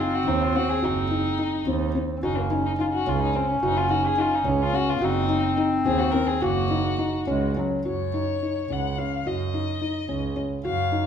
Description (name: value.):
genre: contemporary instrumental, chamber music in an uneven meter.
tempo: 214 BPM (eighths).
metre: 5/8.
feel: straight.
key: Gb lydian.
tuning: A4 = 440 Hz.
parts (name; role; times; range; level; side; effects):
dark violin; melody; 0.0-11.1 s; Bb3 to Gb5; -29 LUFS; left 6 dB; none.
dark clarinet; second line; 0.0-7.8 s; Gb3 to Db4; -26 LUFS; left 1 dB; none.
felt-muted upright piano; arpeggios; 0.0-11.1 s; C4 to Gb4; -27 LUFS; left 2 dB; none.
rich double bass; bass; 0.0-11.1 s; Gb1 to Gb2; -28 LUFS; right 6 dB; none.
room: moderate scoring stage reverb, RT60 1.6 s.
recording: minimal, uncompressed stereo recording.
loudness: -22 LUFS.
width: side -8 dB against mid.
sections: 0.0-7.8 A section; 7.8-11.1 B section.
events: none.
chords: 0.0 Ebm6; 2.2 Gb5; 5.0 Ab7/Gb; 6.4 Gb6; 7.8 Gb5.